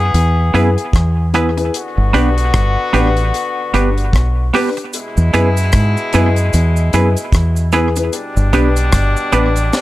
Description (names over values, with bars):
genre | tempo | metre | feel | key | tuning
roots reggae | 75 BPM | 4/4 | swing 58% on 16ths | E major | A4 = 440 Hz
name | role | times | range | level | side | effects
warm horn section | second line | 0.0-9.8 s | B2 to G#4 | -20 LUFS | left 2 dB | tape echo
deep dub fingered electric bass | bass | 0.0-9.7 s | G1 to G#2 | -14 LUFS | equal | none
deep reggae drum kit | drums | 0.1-9.8 s | hi-hat, kick drum, rim click, snare drum | -18 LUFS | equal | none
semi-hollow electric guitar | accompaniment | 0.5-9.5 s | B3 to B4 | -18 LUFS | right 5 dB | harmonic tremolo, tape echo
dark upright piano | stabs | 0.5-9.5 s | D4 to B4 | -21 LUFS | left 4 dB | none
cabasa | percussion | 4.9-9.8 s | none | -31 LUFS | right 6 dB | none
room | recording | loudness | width
light reverb, small room ambience | none | -12 LUFS | side -16 dB against mid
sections
0.0-9.8 A section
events
none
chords
0.0 E; 1.7 G; 4.9 E; 8.1 G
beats
0.14 0.94 | 1.74 2.54 3.34 4.13 | 4.93 5.73 6.53 7.33 | 8.13 8.93 9.72